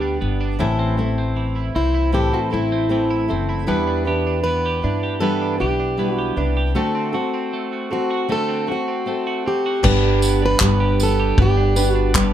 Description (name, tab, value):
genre	acoustic pop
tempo	78 BPM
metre	4/4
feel	straight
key	G major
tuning	A4 = 441 Hz
part	fingerpicked plugged-in steel-string acoustic guitar	melody	0.0-12.1 s	E4 to B4	-22 LUFS	equal	none
part	fingerpicked steel-string acoustic guitar	accompaniment	0.0-12.3 s	A2 to B4	-22 LUFS	equal	none
part	twelve-string electric guitar	arpeggios	0.0-12.3 s	E3 to G4	-28 LUFS	right 5 dB	spring reverb
part	upright bass	bass	0.0-12.3 s	F#1 to G2	-21 LUFS	left 1 dB	none
part	unplugged drum kit	drums	9.8-12.3 s	crash cymbal, handclaps, kick drum, tambourine	-20 LUFS	left 1 dB	none
room	light reverb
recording	none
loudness	-17 LUFS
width	side -10 dB against mid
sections	0.0-9.8 A section; 9.8-12.3 B section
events	none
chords	0.0 G; 0.6 Am; 3.7 Em7; 6.8 D7; 9.8 G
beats	| 0.60 1.37 2.14 2.91 | 3.68 4.45 5.22 6.00 | 6.76 7.54 8.30 9.07 | 9.84 10.61 11.38 12.15